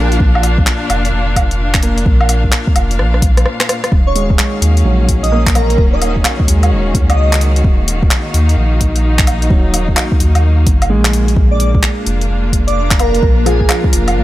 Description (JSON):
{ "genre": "future garage", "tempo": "129 BPM", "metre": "4/4", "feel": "swing 64% on 16ths", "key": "Eb minor", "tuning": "A4 = 440 Hz", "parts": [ { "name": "airy dreamy lead", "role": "melody", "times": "0.0-0.1, 4.1-7.4, 11.5-13.7 s", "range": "Ab4 to Eb5", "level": "-20 LUFS", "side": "equal", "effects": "chorus, digital delay" }, { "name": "clear upright piano", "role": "accompaniment", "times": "0.0-14.2 s", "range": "F3 to Bb3", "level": "-22 LUFS", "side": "right 2 dB", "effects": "sidechain pumping, dub echo" }, { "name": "clear chamber string section", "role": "sustained chords", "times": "0.0-14.2 s", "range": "Bb2 to F5", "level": "-21 LUFS", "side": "left 2 dB", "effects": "sidechain pumping" }, { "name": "warm sub bass", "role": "bass", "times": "0.0-14.2 s", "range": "Eb1 to Eb2", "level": "-14 LUFS", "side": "equal", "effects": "sidechain pumping" }, { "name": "deep house drum kit", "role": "drums", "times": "0.1-14.1 s", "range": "handclaps, hi-hat, rim click, woodblock", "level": "-17 LUFS", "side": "equal", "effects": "overdrive" }, { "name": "electronic kick drum", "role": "drums", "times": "0.2-13.9 s", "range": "none", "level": "-13 LUFS", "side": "equal", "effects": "overdrive" }, { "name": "backwards swelling texture", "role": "texture", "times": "12.4-14.2 s", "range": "Bb3 to Bb4", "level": "-26 LUFS", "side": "left 1 dB", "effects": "built-in reverb" } ], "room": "digital ambience", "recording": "none", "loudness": "-10 LUFS", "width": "side -16 dB against mid", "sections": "0.0-3.9 A section; 3.9-14.2 A section", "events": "drum fill 3.0-3.9; break 3.5-3.9", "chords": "0.0 Bb; 3.9 Ebm7; 11.4 Bb" }